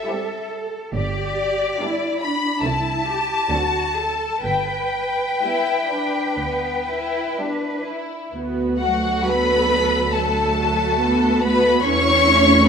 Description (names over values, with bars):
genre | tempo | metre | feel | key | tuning
classical, slow romantic movement for string orchestra | 60-73 BPM | 4/4 | rubato | G major, D major from 8.3 s | A4 = 442 Hz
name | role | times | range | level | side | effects
warm symphonic violin section | melody | 0.0-12.7 s | D5 to C#6 | -21 LUFS | left 4 dB | none
warm studio cello section | bass | 0.0-12.7 s | F#3 to B4 | -25 LUFS | right 2 dB | none
warm symphonic violin section | second line | 0.1-12.7 s | B3 to C#5 | -23 LUFS | left 1 dB | none
warm symphonic viola section | accompaniment | 0.1-12.7 s | E3 to A4 | -23 LUFS | right 2 dB | none
rich studio double bass section | bass | 0.9-12.7 s | G1 to E2 | -27 LUFS | right 3 dB | none
room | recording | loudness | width
moderate scoring stage reverb, RT60 2.0 s | minimal, uncompressed stereo recording | -18 LUFS | side -6 dB against mid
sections
0.0-8.3 A section; 8.3-12.7 B section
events
none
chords
0.0 C/G; 0.9 G; 2.6 Am/C; 3.5 D7; 4.5 G; 8.3 D; 11.8 A/E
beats
0.08 | 0.95 1.81 2.63 3.50 | 4.46 5.43 6.40 7.38 | 8.34 9.27 10.14 10.99 | 11.85 12.67